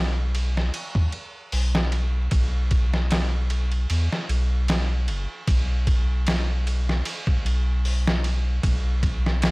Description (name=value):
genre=trip hop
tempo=76 BPM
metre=4/4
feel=swing 54% on 16ths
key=unclear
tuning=A4 = 440 Hz
part: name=soft dub sub bass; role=bass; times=0.0-9.5 s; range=F#1 to E2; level=-22 LUFS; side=equal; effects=none
part: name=trip hop sampler-style drum kit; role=drums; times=0.3-9.5 s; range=hi-hat, kick drum, ride cymbal, snare drum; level=-25 LUFS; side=equal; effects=none
room=little or no reverb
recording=dry, gritty hardware recording, vinyl crackle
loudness=-21 LUFS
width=side -26 dB against mid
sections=0.0-9.5 A section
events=none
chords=none